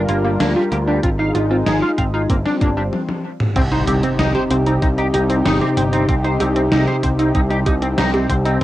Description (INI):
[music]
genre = synthwave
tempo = 95 BPM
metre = 4/4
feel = straight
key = C minor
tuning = A4 = 440 Hz
[part]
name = warm analog pad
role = sustained chords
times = 0.0-8.6 s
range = C3 to Bb4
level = -20 LUFS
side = left 1 dB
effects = chorus, sidechain pumping, cassette tape
[part]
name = analog pluck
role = arpeggios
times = 0.0-8.6 s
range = Bb3 to G4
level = -22 LUFS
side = right 1 dB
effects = chorus, cassette tape, tape echo
[part]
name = overdriven picked electric bass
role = bass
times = 0.0-8.6 s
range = G1 to D2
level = -20 LUFS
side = equal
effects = tube saturation
[part]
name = clean electric guitar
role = riff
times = 0.1-8.6 s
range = G3 to F5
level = -24 LUFS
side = left 1 dB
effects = ensemble chorus, cassette tape, tape echo
[part]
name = gated 80s digital drum machine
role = drums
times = 0.1-8.6 s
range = crash cymbal, hi-hat, snare drum, toms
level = -23 LUFS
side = equal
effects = gated reverb, gated reverb snare, cassette tape
[part]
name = electronic kick drum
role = drums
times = 1.0-8.6 s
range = none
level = -19 LUFS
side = equal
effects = cassette tape
[part]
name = impact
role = sound effects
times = 3.7-6.1 s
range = none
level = -29 LUFS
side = equal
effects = none
[sound]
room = moderate booth ambience, RT60 0.2 s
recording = home recording on cassette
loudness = -15 LUFS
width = side -15 dB against mid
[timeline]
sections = 0.0-3.6 A section; 3.6-8.6 B section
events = drum fill 2.9-3.6; stop 2.9-3.6; impact 3.6-6.1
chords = 0.0 Gm7; 1.0 Fm7/Ab; 2.3 G7sus4; 3.6 Cm